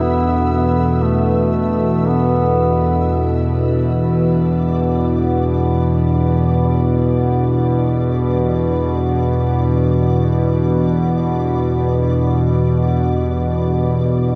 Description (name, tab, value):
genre	dark ambient drone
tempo	free time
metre	none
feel	none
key	unclear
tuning	A4 = 440 Hz
part	warm duduk	melody	0.0-3.1 s	A3 to B3	-23 LUFS	equal	shimmer reverb, tape echo
part	dark analog pad	sustained chords	0.0-14.4 s	E3 to B4	-25 LUFS	equal	chorus, shimmer reverb
part	analog drone	drone	0.0-14.4 s	E2 to B2	-18 LUFS	equal	chorus
part	flickering grainy texture	texture	0.0-14.4 s	D5 to E5	-36 LUFS	equal	built-in reverb, shimmer reverb
room	wet plate reverb, RT60 3.4 s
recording	dreamy mix soaked in reverb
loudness	-17 LUFS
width	mono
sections	0.0-14.4 A section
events	fade-out on analog synth pad 0.0-14.4; fade-out on synth texture 0.0-14.4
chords	0.0 Gadd9/E